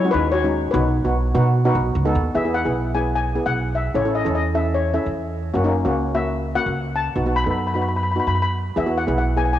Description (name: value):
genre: calypso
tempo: 149 BPM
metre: 4/4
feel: swing 54% on 16ths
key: E major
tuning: A4 = 439 Hz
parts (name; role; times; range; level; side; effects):
- steel pan; melody; 0.0-9.6 s; D#4 to B5; -23 LUFS; left 4 dB; none
- steel pan; accompaniment; 0.0-9.6 s; G#3 to A4; -23 LUFS; equal; cassette tape
- upright bass; bass; 0.0-9.6 s; F#1 to B2; -22 LUFS; right 1 dB; none
room: moderate lush hall reverb, RT60 2.7 s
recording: home recording on cassette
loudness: -18 LUFS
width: side -12 dB against mid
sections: 0.0-2.3 A section; 2.3-9.6 B section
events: none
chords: 0.0 F#sus2; 0.7 B; 2.3 Eadd9; 3.9 A; 5.5 F#7; 7.2 B; 8.8 Eadd9